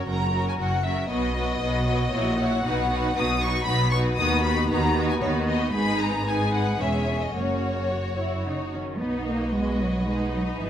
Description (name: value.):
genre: quick classical-period movement for string orchestra.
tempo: 115 BPM.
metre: 3/4.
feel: rubato.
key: B major.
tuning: A4 = 439 Hz.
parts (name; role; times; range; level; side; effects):
rich studio violin section; melody; 0.0-10.7 s; C#5 to D#6; -29 LUFS; left 2 dB; none.
rich studio violin section; second line; 0.0-10.7 s; F#4 to C#5; -30 LUFS; left 3 dB; none.
rich studio viola section; accompaniment; 0.0-10.7 s; F#3 to F#4; -29 LUFS; right 2 dB; none.
rich studio cello section; bass; 0.1-10.7 s; E2 to B3; -28 LUFS; right 1 dB; none.
rich studio double bass section; bass; 0.1-10.7 s; E1 to D#2; -30 LUFS; right 1 dB; none.
room: moderate recital hall reverb, RT60 1.7 s.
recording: none.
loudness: -22 LUFS.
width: side -10 dB against mid.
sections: 0.0-9.0 A section; 9.0-10.7 A section.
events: none.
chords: 0.0 F#; 1.1 B; 2.1 F#7/A#; 2.6 B; 4.2 B/D#; 5.7 G#m; 6.8 C#m/E; 7.4 F#; 9.0 B.